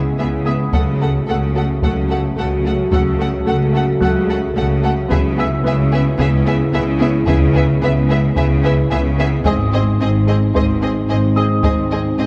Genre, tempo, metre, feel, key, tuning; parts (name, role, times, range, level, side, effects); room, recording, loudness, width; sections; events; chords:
cinematic, hybrid orchestral and electronic film score; 110 BPM; 4/4; straight; C# minor; A4 = 442 Hz
dark French horn section; sustained chords; 0.0-12.3 s; A3 to F#4; -27 LUFS; equal
deep dark ambient pad; sustained chords; 0.0-12.3 s; F#3 to A4; -26 LUFS; equal; chorus, built-in reverb
rich symphonic cello section; bass; 0.0-12.3 s; G#2 to C#3; -22 LUFS; equal
rich symphonic double bass section; bass; 0.0-12.3 s; G#1 to C#2; -23 LUFS; equal
warm concert grand piano; texture; 0.0-12.3 s; B#4 to F#6; -30 LUFS; equal; digital delay
warm symphonic violin section; melody; 0.2-12.3 s; D#5 to F#5; -29 LUFS; equal
warm symphonic violin section; second line; 0.2-12.3 s; G#4 to A4; -31 LUFS; equal
warm symphonic viola section; accompaniment; 0.2-12.3 s; A3 to B#3; -28 LUFS; equal
soft round pluck; arpeggios; 0.5-11.8 s; C#3 to G#4; -28 LUFS; equal
taiko ensemble; drums; 0.7-12.2 s; -24 LUFS; equal
wet scoring stage reverb, RT60 1.6 s; dark, warm production; -16 LUFS; mono
0.0-12.3 A section
0.0 C#m7; 0.7 F#m/C#; 5.1 C#m7; 9.5 G#